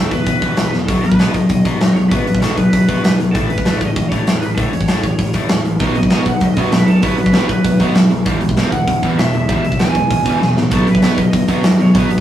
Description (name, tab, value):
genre	punk rock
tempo	195 BPM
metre	4/4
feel	straight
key	B mixolydian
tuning	A4 = 440 Hz
part	lead guitar through a small cranked amp	melody	0.0-12.2 s	A4 to G#5	-23 LUFS	right 1 dB	overdrive
part	crunchy overdriven guitar	riff	0.0-12.2 s	E2 to B3	-17 LUFS	left 2 dB	none
part	growling picked electric bass	bass	0.0-12.2 s	E1 to F#2	-23 LUFS	right 1 dB	overdrive
part	big rock drum kit	drums	0.1-12.2 s	hi-hat, kick drum, snare drum	-16 LUFS	equal	none
part	overdriven semi-hollow guitar	riff	5.8-12.2 s	E2 to B3	-18 LUFS	right 4 dB	none
room	moderate studio ambience, RT60 0.5 s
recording	rough rehearsal-room recording, tube saturation, small room ambience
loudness	-12 LUFS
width	side -11 dB against mid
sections	0.0-12.2 A section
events	drum fill 0.7, 10.4-10.7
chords	0.0 E5; 0.9 B; 3.3 A; 5.8 B; 8.3 E; 10.7 B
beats	0.27 0.58 | 0.89 1.19 1.50 1.81 | 2.12 2.42 2.73 3.04 | 3.35 3.65 3.96 4.27 | 4.58 4.88 5.19 5.50 | 5.80 6.11 6.42 6.73 | 7.03 7.34 7.65 7.96 | 8.26 8.57 8.88 9.19 | 9.49 9.80 10.11 10.41 | 10.72 11.03 11.34 11.64 | 11.95